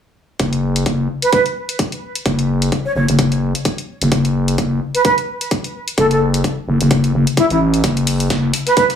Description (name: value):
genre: bass house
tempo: 129 BPM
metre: 4/4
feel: swing 56% on 16ths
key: F# minor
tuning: A4 = 440 Hz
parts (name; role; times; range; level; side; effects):
- growling FM bass; bass; 0.4-8.5 s; F#1 to A1; -15 LUFS; left 1 dB; tube saturation, sidechain pumping
- electronic hi-hat; drums; 0.4-9.0 s; none; -24 LUFS; left 2 dB; none
- electronic kick drum; drums; 0.4-8.9 s; none; -18 LUFS; equal; high-pass filter on kick
- mellow jazz flute; melody; 1.2-8.9 s; E4 to C#5; -17 LUFS; right 2 dB; tape echo
- breakbeat sampler-style drum kit; drums; 7.8-9.0 s; hi-hat, snare drum; -28 LUFS; right 1 dB; overdrive, sidechain pumping on hats, high-pass filter on hats, high-pass filter on snare, high-pass filter on room
room: light reverb, digital ambience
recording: small room reverb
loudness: -14 LUFS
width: side -8 dB against mid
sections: 0.4-9.0 A section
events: none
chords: none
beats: | 0.40 0.86 1.33 1.79 | 2.26 2.72 3.19 3.65 | 4.12 4.58 5.05 5.51 | 5.98 6.44 6.91 7.37 | 7.84 8.30 8.77